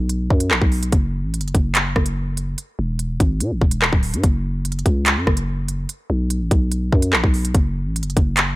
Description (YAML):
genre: hip hop, drill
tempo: 145 BPM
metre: 4/4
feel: half-time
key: F# minor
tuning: A4 = 439 Hz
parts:
  - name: growling 808-style bass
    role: bass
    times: 0.0-8.6 s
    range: D1 to B2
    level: -21 LUFS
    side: equal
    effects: none
  - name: drill drum kit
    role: drums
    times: 0.1-8.5 s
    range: handclaps, hi-hat, kick drum, rim click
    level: -18 LUFS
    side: equal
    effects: none
room: digital ambience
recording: none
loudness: -17 LUFS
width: side -18 dB against mid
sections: 0.0-8.6 A section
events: none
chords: none